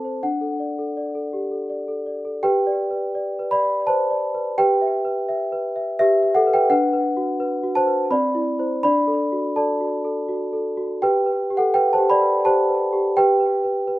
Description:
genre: classical, lullaby for celesta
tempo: 84 BPM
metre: 3/4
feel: straight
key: G major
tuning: A4 = 440 Hz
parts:
  - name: celesta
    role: solo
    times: 0.0-14.0 s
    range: C4 to B5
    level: -18 LUFS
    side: equal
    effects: slapback echo
room: little or no reverb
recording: recorded outdoors, with no room sound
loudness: -18 LUFS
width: side -16 dB against mid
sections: 0.0-2.4 A section; 2.4-14.0 B section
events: none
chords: 0.2 D; 2.4 G; 4.6 Em/G; 6.7 Bm/D; 8.1 C; 8.8 D; 11.0 G; 13.2 Em/G (rootless)

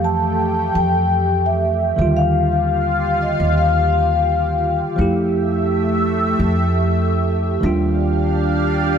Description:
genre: drum and bass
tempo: 170 BPM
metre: 4/4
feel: straight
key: F major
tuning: A4 = 440 Hz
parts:
  - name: vibraphone with soft mallets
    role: melody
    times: 0.0-4.8 s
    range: Eb5 to A5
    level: -20 LUFS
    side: left 3 dB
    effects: digital delay
  - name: bell-like tine electric piano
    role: accompaniment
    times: 0.0-9.0 s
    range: D3 to G4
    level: -22 LUFS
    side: right 1 dB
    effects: vintage 12-bit sampler grit, tape echo
  - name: lush unison pad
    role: sustained chords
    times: 0.0-9.0 s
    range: A3 to G5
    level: -22 LUFS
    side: right 1 dB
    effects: chorus, phaser
  - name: upright bass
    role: bass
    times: 0.0-9.0 s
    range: Eb2 to F2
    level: -20 LUFS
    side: equal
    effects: none
room: light reverb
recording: none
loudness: -15 LUFS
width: side -7 dB against mid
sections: 0.0-9.0 A section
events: none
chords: 0.0 Fmaj9; 2.0 Ebmaj9; 5.0 Fmaj9; 7.6 Ebmaj9

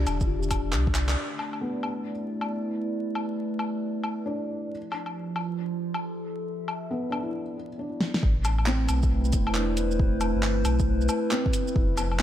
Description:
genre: future garage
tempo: 136 BPM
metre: 4/4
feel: swing 64% on 16ths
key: A minor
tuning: A4 = 439 Hz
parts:
  - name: felt-muted upright piano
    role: accompaniment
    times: 0.0-12.2 s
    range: B3 to G4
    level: -34 LUFS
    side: left 1 dB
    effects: sidechain pumping, ping-pong delay
  - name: warbly tape-like pad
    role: sustained chords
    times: 0.0-12.2 s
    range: D3 to E5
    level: -30 LUFS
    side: equal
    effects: chorus, built-in reverb, sidechain pumping
  - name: warm sub bass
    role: bass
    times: 0.0-1.2, 8.2-12.2 s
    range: E1 to C2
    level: -26 LUFS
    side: equal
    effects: sidechain pumping
  - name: deep house drum kit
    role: drums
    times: 0.1-12.2 s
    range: handclaps, hi-hat, shaker, snare drum, woodblock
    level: -31 LUFS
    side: left 1 dB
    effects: none
  - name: electronic kick drum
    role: drums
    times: 0.2-0.9, 8.2-11.9 s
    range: none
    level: -26 LUFS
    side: equal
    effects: none
room: light reverb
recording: vinyl crackle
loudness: -25 LUFS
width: side -11 dB against mid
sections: 0.0-1.2 A section; 1.2-8.2 B section; 8.2-12.2 C section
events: drum fill 0.9, 8.0; band accent 1.1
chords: 0.0 D7sus4; 1.2 A5; 4.7 Fmaj7; 8.2 Am

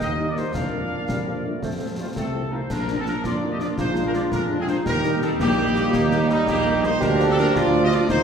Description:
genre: military-style march for wind band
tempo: 111 BPM (dotted quarters)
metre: 6/8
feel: straight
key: Bb major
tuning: A4 = 441 Hz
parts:
  - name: dark trumpet section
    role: melody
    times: 0.0-8.2 s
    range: Eb4 to F5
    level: -27 LUFS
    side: left 1 dB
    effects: none
  - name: mellow woodwind section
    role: second line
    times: 0.0-8.2 s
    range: G3 to Eb5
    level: -29 LUFS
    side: left 2 dB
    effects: none
  - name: warm trombone section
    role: sustained chords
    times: 0.0-8.2 s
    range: F3 to Eb4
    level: -29 LUFS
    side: equal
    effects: none
  - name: mellow tuba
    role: bass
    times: 0.0-8.2 s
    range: Bb1 to F2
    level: -25 LUFS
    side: right 2 dB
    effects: none
  - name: concert snare drum, concert bass drum and clash cymbals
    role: drums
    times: 0.0-8.2 s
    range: none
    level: -31 LUFS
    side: left 1 dB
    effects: none
  - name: dark French horn section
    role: accompaniment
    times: 0.2-8.0 s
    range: Eb3 to Eb4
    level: -32 LUFS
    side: left 3 dB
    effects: none
  - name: warm euphonium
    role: second line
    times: 1.1-8.2 s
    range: F3 to G4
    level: -25 LUFS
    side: right 3 dB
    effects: none
room: wet recital hall reverb, RT60 1.5 s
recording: recorded in a church or concert hall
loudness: -20 LUFS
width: side -7 dB against mid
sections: 0.0-2.7 A section; 2.7-8.2 B section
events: none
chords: 0.0 Eb6; 0.5 Bb/F; 1.6 F; 2.7 Bb; 3.8 Bb7; 4.9 Eb; 7.0 Bb/D

